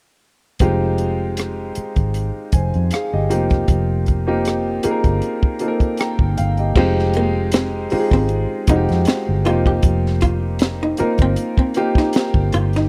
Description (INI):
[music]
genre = R&B, neo-soul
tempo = 78 BPM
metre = 4/4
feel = swing 54% on 16ths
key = F minor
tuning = A4 = 440 Hz
[part]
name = clear upright piano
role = accompaniment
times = 0.6-12.9 s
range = Ab3 to Bb5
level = -23 LUFS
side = equal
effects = none
[part]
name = vintage muted fingered electric bass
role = bass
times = 0.6-12.9 s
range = F1 to F2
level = -22 LUFS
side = equal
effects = none
[part]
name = compact cocktail drum kit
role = drums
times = 0.6-12.9 s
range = crash cymbal, hi-hat, kick drum, rim click, snare drum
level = -20 LUFS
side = equal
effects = none
[part]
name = archtop guitar, miked and amplified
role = second line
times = 6.8-12.9 s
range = Bb3 to G4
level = -24 LUFS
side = equal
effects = none
[sound]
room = studio ambience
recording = dry, close 1970s-style studio recording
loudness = -18 LUFS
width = mono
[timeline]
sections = 0.6-6.8 A section; 6.8-12.9 B section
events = upright piano fill 5.6-6.8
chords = 0.6 Fm9; 3.3 Eb6/F; 6.8 Fm9; 9.5 Eb6/F